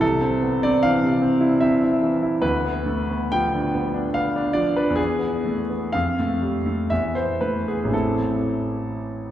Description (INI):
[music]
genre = classical, romantic character piece for solo piano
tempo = 56-76 BPM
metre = 3/4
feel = rubato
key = unclear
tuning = A4 = 440 Hz
[part]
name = clear concert grand piano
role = solo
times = 0.0-9.3 s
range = A1 to G5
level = -20 LUFS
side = equal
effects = none
[sound]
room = wet concert hall reverb, RT60 2.4 s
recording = heard from further back in the room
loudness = -20 LUFS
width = side -12 dB against mid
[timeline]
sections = 0.0-9.3 A section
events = none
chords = 0.0 Cmaj13; 2.4 Bdim/D; 5.0 E; 6.0 F; 6.9 E5; 7.9 Am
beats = | 0.02 0.83 1.62 | 2.42 3.32 4.14 | 4.98 5.95 6.90 | 7.92 8.98